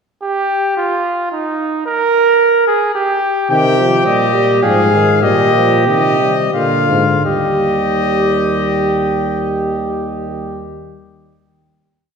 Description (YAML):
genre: classical, imitative canzona for brass ensemble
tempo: 80-111 BPM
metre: 3/4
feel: straight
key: Eb major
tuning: A4 = 440 Hz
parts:
  - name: warm flugelhorn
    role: second line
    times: 0.2-10.7 s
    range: Eb4 to Bb4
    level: -16 LUFS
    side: right 2 dB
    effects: none
  - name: clear trumpet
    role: melody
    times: 3.5-10.7 s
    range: Eb5 to G5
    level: -19 LUFS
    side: left 8 dB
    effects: none
  - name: dark euphonium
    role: accompaniment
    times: 3.5-10.7 s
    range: D3 to G3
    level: -18 LUFS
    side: left 1 dB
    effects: none
  - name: mellow bass trombone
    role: bass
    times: 3.5-10.7 s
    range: Eb2 to C3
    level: -18 LUFS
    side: right 1 dB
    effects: none
room: wet scoring stage reverb, RT60 1.6 s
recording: minimal, uncompressed stereo recording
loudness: -12 LUFS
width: side -6 dB against mid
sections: 0.2-7.3 exposition; 7.3-11.8 final chord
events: slowing down 2.7-7.3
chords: 0.2 N.C.; 3.5 Cm; 4.6 Fm/Ab; 5.2 Eb/Bb; 6.5 Bb; 7.3 Eb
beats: | 0.23 0.78 1.32 | 1.87 2.41 2.95 | 3.50 4.06 4.63 | 5.22 5.86 6.53 | 7.26 8.01 8.76 | 9.51 10.27